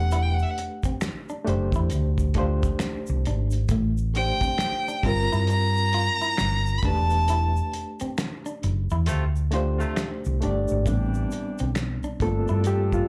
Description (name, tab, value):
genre	R&B, neo-soul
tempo	67 BPM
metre	4/4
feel	swing 61% on 16ths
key	unclear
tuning	A4 = 440 Hz
part	rich violin	melody	0.0-7.7 s	E5 to B5	-28 LUFS	equal	none
part	bright reed electric piano	accompaniment	0.0-13.1 s	G3 to D5	-32 LUFS	equal	fast tremolo
part	hollow-body short-scale fingered electric bass	bass	0.0-13.0 s	E1 to G2	-26 LUFS	equal	none
part	clean electric guitar	second line	0.1-12.7 s	A3 to F4	-36 LUFS	equal	slapback echo
part	cloth-damped thuddy drum kit	drums	0.1-13.1 s	finger snaps, hi-hat, kick drum, snare drum	-31 LUFS	equal	none
part	egg shaker and finger snaps	percussion	0.1-13.1 s	none	-44 LUFS	equal	none
part	warm horn section	stabs	9.1-13.1 s	C3 to A4	-38 LUFS	equal	slapback echo
room	little or no reverb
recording	live gig heard through the venue's PA, club reverb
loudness	-25 LUFS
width	mono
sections	0.0-10.9 A section; 10.9-13.1 B section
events	break 7.3-10.9; band accent 7.3-10.9; reed electric piano solo 10.9-13.1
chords	0.0 Em11; 1.9 D7(no3); 3.7 Am7; 5.0 Gm7; 6.8 Em11; 9.1 Dm7; 10.9 Am11; 12.2 Gm11